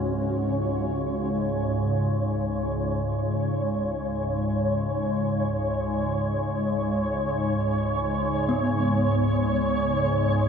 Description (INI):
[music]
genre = dark ambient drone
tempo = free time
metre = none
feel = none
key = unclear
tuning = A4 = 441 Hz
[part]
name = organ-like drone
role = drone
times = 0.0-10.5 s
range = C#2 to G#2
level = -25 LUFS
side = equal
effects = ensemble chorus, built-in reverb
[part]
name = flickering grainy texture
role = texture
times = 0.4-10.5 s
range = C#5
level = -29 LUFS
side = right 1 dB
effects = built-in reverb
[part]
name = gamelan-type bronze metallophone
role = arpeggios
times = 8.5-10.5 s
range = B3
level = -28 LUFS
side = left 1 dB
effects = ping-pong delay
[sound]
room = wet cathedral reverb, RT60 5.7 s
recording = in a vast, echoing space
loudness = -23 LUFS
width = side -6 dB against mid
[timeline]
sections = 0.1-10.5 A section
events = none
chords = 0.1 C#5